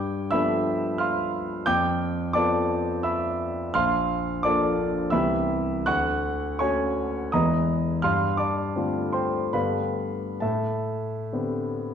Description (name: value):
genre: classical, impressionist solo piano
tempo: 65-90 BPM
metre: 3/4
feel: rubato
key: unclear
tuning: A4 = 440 Hz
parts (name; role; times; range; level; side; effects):
- warm concert grand piano; solo; 0.0-11.9 s; Bb1 to G6; -23 LUFS; equal; none
room: wet recital hall reverb, RT60 1.4 s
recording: dark, warm production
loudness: -23 LUFS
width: side -8 dB against mid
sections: 0.0-11.9 A section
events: none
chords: 0.0 G9; 1.7 Fmaj7#11; 3.7 Bbmaj7; 5.1 Cmaj7; 5.9 Dmaj7; 7.3 Emaj7; 8.0 G9sus4; 9.5 Gadd9; 10.4 Am11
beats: 0.32 1.00 | 1.67 2.35 3.04 | 3.75 4.44 5.12 | 5.86 6.60 7.32 | 8.04 8.76 9.55 | 10.42 11.33